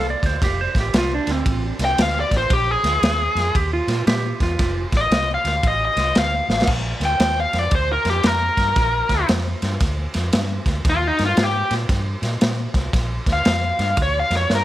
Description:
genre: electric blues shuffle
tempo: 115 BPM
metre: 4/4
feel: swing 64% on 8ths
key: Bb mixolydian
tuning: A4 = 440 Hz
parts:
  - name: smooth overdriven lead guitar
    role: melody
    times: 0.0-14.6 s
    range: Eb4 to G5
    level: -20 LUFS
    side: left 1 dB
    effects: none
  - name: clean lap steel guitar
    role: second line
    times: 0.0-4.9 s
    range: C4 to D5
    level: -25 LUFS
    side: right 4 dB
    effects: tape echo
  - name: vintage muted fingered electric bass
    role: bass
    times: 0.0-14.6 s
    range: F1 to Bb2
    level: -24 LUFS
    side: equal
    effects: none
  - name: crunchy breakbeat drum kit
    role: drums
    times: 0.2-14.6 s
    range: crash cymbal, kick drum, ride cymbal, snare drum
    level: -21 LUFS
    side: equal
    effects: none
room: light reverb, small room ambience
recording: none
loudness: -17 LUFS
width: side -14 dB against mid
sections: 0.0-6.7 A section; 6.7-14.6 B section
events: drum fill 6.4; lead electric guitar solo 6.7-14.6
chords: 0.0 F; 2.5 Bb7; 3.6 Eb5; 4.6 F; 6.7 Bb; 10.9 Eb; 12.9 Bb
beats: | 0.42 0.94 1.46 1.99 | 2.51 3.03 3.55 4.07 | 4.59 5.12 5.64 6.16 | 6.68 7.20 7.73 8.25 | 8.77 9.29 9.81 10.33 | 10.86 11.38 11.90 12.42 | 12.94 13.46 13.98 14.50

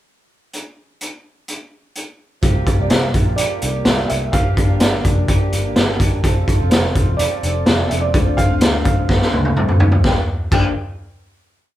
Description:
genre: jangly indie pop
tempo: 126 BPM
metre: 4/4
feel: straight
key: G minor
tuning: A4 = 439 Hz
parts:
  - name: raw garage drum kit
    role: drums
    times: 0.5-10.6 s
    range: crash cymbal, hi-hat, kick drum, snare drum, toms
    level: -16 LUFS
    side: equal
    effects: none
  - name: fingerpicked twelve-string acoustic guitar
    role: accompaniment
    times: 2.4-10.7 s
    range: G2 to A4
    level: -28 LUFS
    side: right 6 dB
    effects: none
  - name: electric guitar through a small old amp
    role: arpeggios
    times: 2.4-10.7 s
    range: G2 to A4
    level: -27 LUFS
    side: left 5 dB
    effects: none
  - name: vintage muted picked electric bass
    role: bass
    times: 2.4-10.7 s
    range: E1 to D2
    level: -23 LUFS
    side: equal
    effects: none
  - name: dark upright piano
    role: melody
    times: 2.8-10.7 s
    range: C5 to G5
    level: -25 LUFS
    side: right 2 dB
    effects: none
room: light reverb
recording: band playing live in one room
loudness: -14 LUFS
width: side -13 dB against mid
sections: 0.5-2.4 pickup bar; 2.4-10.0 verse; 10.0-11.8 final chord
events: drum fill 9.1-10.0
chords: 0.5 N.C.; 2.4 C7sus4; 4.3 Gm7; 6.2 Fadd9; 8.1 Dm7; 10.0 Gm7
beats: | 0.53 1.01 1.48 1.95 | 2.43 2.90 3.38 3.85 | 4.33 4.81 5.28 5.76 | 6.24 6.71 7.19 7.67 | 8.14 8.62 9.09 9.57 | 10.04 10.52

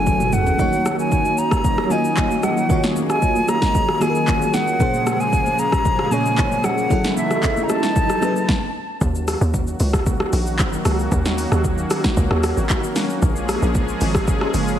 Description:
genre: amapiano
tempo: 114 BPM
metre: 4/4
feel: straight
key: Eb minor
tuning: A4 = 444 Hz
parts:
  - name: concert flute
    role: melody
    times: 0.0-8.8 s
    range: Fb5 to Bb5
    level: -22 LUFS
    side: equal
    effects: ping-pong delay
  - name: FM electric piano with soft pad layer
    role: accompaniment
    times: 0.0-8.5 s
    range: Bb2 to Eb5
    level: -23 LUFS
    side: left 1 dB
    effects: chorus
  - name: warm analog pad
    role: sustained chords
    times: 0.0-14.8 s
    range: Db3 to Ab4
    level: -25 LUFS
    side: right 1 dB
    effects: chorus, tremolo, sidechain pumping
  - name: punchy sub bass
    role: bass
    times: 0.0-0.6 s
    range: Gb1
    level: -28 LUFS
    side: equal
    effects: none
  - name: deep house drum kit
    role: drums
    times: 0.1-14.8 s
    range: handclaps, hi-hat, kick drum, rim click, shaker, snare drum, toms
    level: -21 LUFS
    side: equal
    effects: overdrive
  - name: congas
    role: percussion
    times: 0.1-8.3 s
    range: none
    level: -28 LUFS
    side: right 3 dB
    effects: none
  - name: swell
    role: sound effects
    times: 6.8-8.5 s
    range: none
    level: -31 LUFS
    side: right 1 dB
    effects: none
  - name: hollow log drum bass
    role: bass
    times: 9.0-14.8 s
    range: Gb1 to Eb2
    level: -21 LUFS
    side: equal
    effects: none
room: light reverb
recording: heavily compressed radio sound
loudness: -17 LUFS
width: side -10 dB against mid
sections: 0.0-9.0 A section; 9.0-14.8 B section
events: drum fill 0.1-0.6; swell 6.8-9.0; stop 8.5-9.0; drop 9.0-14.8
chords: 0.0 Gbm7; 0.6 Ebm7; 4.8 Bbm7; 6.9 Gbm7; 9.0 Ebm7; 13.2 Bbm7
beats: 0.07 | 0.59 1.12 1.64 2.17 | 2.70 3.22 3.75 4.28 | 4.80 5.33 5.85 6.38 | 6.91 7.43 7.96 8.49 | 9.01 9.54 10.06 10.59 | 11.12 11.64 12.17 12.70 | 13.22 13.75 14.28

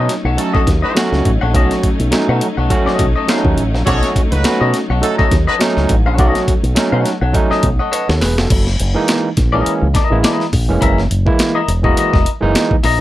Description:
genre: funk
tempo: 104 BPM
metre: 4/4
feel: swing 56% on 16ths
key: unclear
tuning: A4 = 440 Hz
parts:
  - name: clear horn section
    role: second line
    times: 0.0-5.6 s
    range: D#4 to C#5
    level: -21 LUFS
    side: right 3 dB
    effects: none
  - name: clean electric guitar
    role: accompaniment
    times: 0.0-13.0 s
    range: E4 to F#5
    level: -19 LUFS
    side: left 6 dB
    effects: none
  - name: warm studio string section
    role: sustained chords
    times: 0.0-8.5 s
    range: F#3 to D#4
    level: -24 LUFS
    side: left 2 dB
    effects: none
  - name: overdriven tine electric piano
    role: stabs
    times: 0.0-13.0 s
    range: E3 to F#5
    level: -18 LUFS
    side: right 3 dB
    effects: none
  - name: fingered electric bass with an envelope filter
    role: bass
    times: 0.0-13.0 s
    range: E1 to B2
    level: -16 LUFS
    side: equal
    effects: none
  - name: breakbeat sampler-style drum kit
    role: drums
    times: 0.1-13.0 s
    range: crash cymbal, hi-hat, kick drum, snare drum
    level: -16 LUFS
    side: equal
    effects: none
room: little or no reverb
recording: none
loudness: -12 LUFS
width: side -14 dB against mid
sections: 0.0-8.5 A section; 8.5-13.0 B section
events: drum fill 7.9-8.5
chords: 0.0 B9; 8.5 F#13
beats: 0.38 0.96 | 1.54 2.12 2.70 3.28 | 3.87 4.45 5.03 5.61 | 6.19 6.76 7.34 7.92 | 8.50 9.08 9.66 10.24 | 10.82 11.39 11.97 12.55

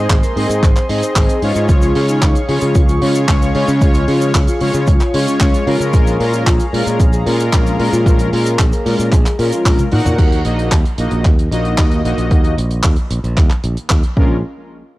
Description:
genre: italo disco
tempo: 113 BPM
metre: 4/4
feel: straight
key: unclear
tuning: A4 = 440 Hz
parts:
  - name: soft octave-layered synth lead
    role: melody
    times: 0.0-10.1, 14.2-14.4 s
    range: Db4 to Eb5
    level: -22 LUFS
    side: left 1 dB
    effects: chorus, tremolo, analog delay
  - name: warm analog pad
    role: sustained chords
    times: 0.0-10.1 s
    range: Ab4 to Db6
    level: -24 LUFS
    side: equal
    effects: chorus
  - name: analog synth brass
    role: stabs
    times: 0.0-14.4 s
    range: Ab3 to Gb5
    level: -20 LUFS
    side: left 1 dB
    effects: chorus
  - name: modern bright fingered electric bass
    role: bass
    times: 0.0-14.4 s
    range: Ab1 to Db3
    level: -17 LUFS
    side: equal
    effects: none
  - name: damped 70s drum kit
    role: drums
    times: 0.1-14.1 s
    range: cabasa, crash cymbal, handclaps, hi-hat, toms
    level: -22 LUFS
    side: equal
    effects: small room ambience
  - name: electronic kick drum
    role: drums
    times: 0.1-14.3 s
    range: none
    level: -13 LUFS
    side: equal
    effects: overdrive, small room ambience
room: small room ambience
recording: dry, gritty hardware recording, transformer saturation, cassette tape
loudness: -12 LUFS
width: side -18 dB against mid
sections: 0.0-10.2 A section; 10.2-14.4 B section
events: drum fill 9.8-10.2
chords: 0.0 Ab; 1.7 Db; 5.9 Bbm7; 10.2 Ebm; 14.2 Bbm7; 14.4 N.C.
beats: 0.10 0.63 1.16 | 1.69 2.22 2.75 3.28 | 3.81 4.34 4.88 5.41 | 5.94 6.47 7.00 7.53 | 8.06 8.59 9.12 9.65 | 10.19 10.72 11.25 11.78 | 12.31 12.84 13.37 13.90

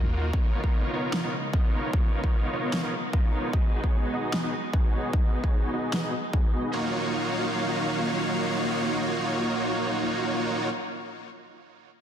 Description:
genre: future bass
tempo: 150 BPM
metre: 4/4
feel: half-time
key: Eb minor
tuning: A4 = 440 Hz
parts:
  - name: rich studio string section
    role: sustained chords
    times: 0.0-10.7 s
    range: Db3 to F5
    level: -36 LUFS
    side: equal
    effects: sidechain pumping
  - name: dense compressed supersaw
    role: riff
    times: 0.0-10.7 s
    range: Bb3 to G#5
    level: -28 LUFS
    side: equal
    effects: cassette tape, sidechain pumping, low-pass filter, ping-pong delay
  - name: electronic kick drum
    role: drums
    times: 0.3-6.4 s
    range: none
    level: -24 LUFS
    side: equal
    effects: overdrive
  - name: electronic snare drum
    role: drums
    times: 1.1-6.0 s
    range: none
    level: -33 LUFS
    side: equal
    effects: overdrive
room: moderate lush hall reverb, RT60 2.1 s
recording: dense, heavily limited modern master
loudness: -24 LUFS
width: side -9 dB against mid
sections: 0.0-6.7 A section; 6.7-9.9 B section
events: filter sweep on supersaw synth 0.0-6.7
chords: 0.3 Db13; 3.5 B6; 6.7 Ebm9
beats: | 0.33 0.73 1.13 1.53 | 1.93 2.33 2.73 3.13 | 3.53 3.93 4.33 4.73 | 5.13 5.53 5.93 6.33 | 6.73 7.13 7.53 7.93 | 8.33 8.73 9.13 9.53

